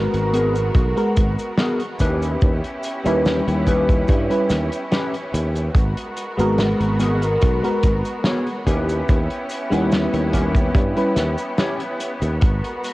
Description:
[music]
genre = vaporwave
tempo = 72 BPM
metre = 4/4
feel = straight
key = G# minor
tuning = A4 = 440 Hz
[part]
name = FM electric piano with soft pad layer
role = accompaniment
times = 0.0-11.1 s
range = G3 to B4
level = -22 LUFS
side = equal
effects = wide subtle chorus, analog delay
[part]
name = rich symphonic string section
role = sustained chords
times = 0.0-12.9 s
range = G#3 to A#4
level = -28 LUFS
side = equal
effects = none
[part]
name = sustaining fretless electric bass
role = bass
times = 0.0-12.6 s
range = G#1 to G2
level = -22 LUFS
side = equal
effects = none
[part]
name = mellow electric guitar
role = riff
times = 0.1-12.7 s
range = B3 to C#5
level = -27 LUFS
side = left 1 dB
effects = analog chorus, analog delay
[part]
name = loose indie drum kit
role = drums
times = 0.1-12.9 s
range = cabasa, hi-hat, snare drum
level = -26 LUFS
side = equal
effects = none
[part]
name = kick drum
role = drums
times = 0.7-12.6 s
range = none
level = -18 LUFS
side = equal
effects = none
[sound]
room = light reverb, small room reverb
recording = worn, warbling old tape, cassette tape, warbly pitch drift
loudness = -17 LUFS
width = side -18 dB against mid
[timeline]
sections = 0.0-12.9 A section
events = none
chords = 0.0 G#m9; 2.0 D#7b9b13; 5.8 G#m9; 8.7 D#7b9b13; 12.4 G#m9

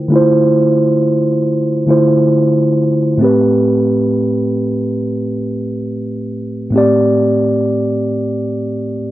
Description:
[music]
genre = R&B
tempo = 68 BPM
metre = 4/4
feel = swing 58% on 16ths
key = unclear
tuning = A4 = 439 Hz
[part]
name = mellow tine electric piano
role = solo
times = 0.0-9.1 s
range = A2 to D5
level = -12 LUFS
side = equal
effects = low-pass filter
[sound]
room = light reverb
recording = dry, gritty hardware recording, nothing above 7.7 kHz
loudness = -12 LUFS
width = side -15 dB against mid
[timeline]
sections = 0.0-9.1 A section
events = none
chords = 0.0 Dm7; 3.2 Am7

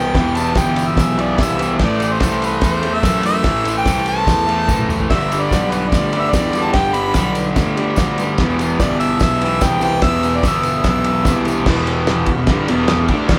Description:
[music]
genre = garage rock duo or trio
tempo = 146 BPM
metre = 4/4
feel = straight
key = E minor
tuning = A4 = 441 Hz
[part]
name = clear harmonica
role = melody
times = 0.0-11.4 s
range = B4 to B5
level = -22 LUFS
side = equal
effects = overdrive
[part]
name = combo organ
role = sustained chords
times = 0.0-13.4 s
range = D4 to C5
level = -32 LUFS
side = equal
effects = none
[part]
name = fuzz guitar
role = riff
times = 0.0-13.4 s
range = E2 to D4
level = -21 LUFS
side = equal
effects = distortion
[part]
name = fuzz picked electric bass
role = bass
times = 0.0-13.4 s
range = E1 to F#2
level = -26 LUFS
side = equal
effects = overdrive, tube saturation
[part]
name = cloth-damped thuddy drum kit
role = drums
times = 0.1-13.4 s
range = crash cymbal, kick drum, ride cymbal, snare drum, toms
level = -22 LUFS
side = equal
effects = none
[part]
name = tambourine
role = percussion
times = 0.2-11.6 s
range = none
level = -38 LUFS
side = equal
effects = none
[sound]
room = light reverb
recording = band playing live in one room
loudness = -17 LUFS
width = mono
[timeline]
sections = 0.0-11.7 A section; 11.7-13.4 B section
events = drum fill 4.7-5.1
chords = 0.0 Em; 1.8 Am; 5.1 G; 8.4 Em

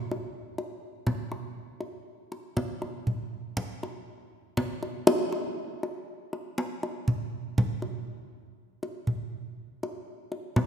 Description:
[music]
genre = gamelan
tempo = 60 BPM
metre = 4/4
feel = straight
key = none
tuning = none
[part]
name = kendang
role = percussion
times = 0.1-10.7 s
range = none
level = -28 LUFS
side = equal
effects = none
[sound]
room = wet scoring stage reverb, RT60 2.0 s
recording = none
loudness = -30 LUFS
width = side -8 dB against mid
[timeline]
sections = 0.0-1.6 A section; 1.6-10.7 B section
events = none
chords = none

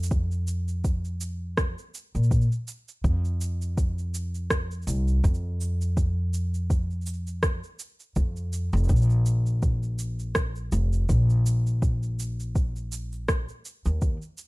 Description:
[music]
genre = folktronica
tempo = 82 BPM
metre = 4/4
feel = swing 56% on 16ths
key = unclear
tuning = A4 = 439 Hz
[part]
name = upright bass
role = bass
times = 0.0-14.2 s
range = F1 to Bb2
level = -25 LUFS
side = equal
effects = none
[part]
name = electronic shaker and rim click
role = drums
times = 0.0-14.5 s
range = none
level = -33 LUFS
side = right 1 dB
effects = studio reverb
[part]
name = electronic kick drum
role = drums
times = 0.1-14.2 s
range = none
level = -25 LUFS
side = equal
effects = studio reverb
[sound]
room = little or no reverb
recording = dark, warm production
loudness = -24 LUFS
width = side -23 dB against mid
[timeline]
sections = 0.0-14.5 A section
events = none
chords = none

